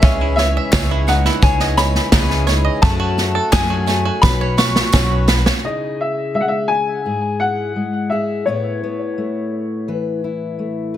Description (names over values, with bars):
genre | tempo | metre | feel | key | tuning
indie folk with a building arrangement | 85 BPM | 4/4 | straight | C# minor | A4 = 440 Hz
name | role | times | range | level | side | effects
warm upright piano | melody | 0.0-9.8 s | C#5 to C#6 | -21 LUFS | left 2 dB | digital delay
felt-muted upright piano | accompaniment | 0.0-5.7 s | F#1 to C#5 | -30 LUFS | left 5 dB | none
picked twelve-string acoustic guitar | accompaniment | 0.0-5.6 s | C#3 to B4 | -27 LUFS | left 6 dB | none
hand-pumped harmonium | sustained chords | 0.0-5.6 s | E3 to F#4 | -30 LUFS | left 1 dB | none
bluegrass banjo | arpeggios | 0.0-5.6 s | A3 to E5 | -24 LUFS | right 10 dB | none
upright bass | bass | 0.0-5.5 s | B1 to F#2 | -19 LUFS | equal | none
natural country drum kit | drums | 0.0-5.6 s | kick drum, snare drum | -16 LUFS | equal | soft clipping on kick, soft clipping on snare
tambourine | percussion | 0.4-5.4 s | none | -33 LUFS | right 12 dB | none
group handclap | percussion | 0.7-5.1 s | none | -29 LUFS | left 4 dB | none
fingerpicked steel-string acoustic guitar | accompaniment | 5.6-11.0 s | G#2 to B4 | -22 LUFS | left 3 dB | none
room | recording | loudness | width
light reverb, studio reverb | dense, heavily limited modern master | -15 LUFS | side -11 dB against mid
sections
0.0-5.6 A section; 5.6-11.0 B section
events
drum fill 4.2-5.6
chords
0.0 C#madd9; 2.8 F#madd9; 4.2 Bsus2; 5.6 C#madd9; 8.5 Aadd9